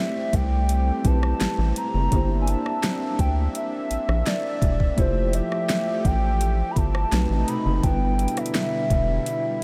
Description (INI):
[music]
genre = contemporary R&B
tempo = 84 BPM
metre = 4/4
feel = straight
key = A minor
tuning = A4 = 440 Hz
[part]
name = hollow clarinet-like synth lead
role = melody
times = 0.0-9.6 s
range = C5 to B5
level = -30 LUFS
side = equal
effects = chorus, tape echo
[part]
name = mellow tine electric piano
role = accompaniment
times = 0.0-9.6 s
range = G3 to C5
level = -33 LUFS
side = equal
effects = none
[part]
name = warm analog pad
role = sustained chords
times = 0.0-9.6 s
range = B2 to E5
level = -33 LUFS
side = equal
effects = chorus
[part]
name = rubbery square bass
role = bass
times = 0.3-9.2 s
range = E1 to D2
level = -25 LUFS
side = equal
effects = none
[part]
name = smooth R&B drum kit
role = drums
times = 0.3-9.4 s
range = hi-hat, kick drum, rim click, snare drum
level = -29 LUFS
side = equal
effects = none
[sound]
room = light reverb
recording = none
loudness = -23 LUFS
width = mono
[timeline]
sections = 0.0-9.6 A section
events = none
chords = 0.0 Am9; 2.1 C9/G; 5.0 Fmaj9; 7.1 B7b9; 7.8 Em7/G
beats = 0.69 1.41 | 2.12 2.83 3.55 4.26 | 4.98 5.69 6.41 7.12 | 7.83 8.55 9.26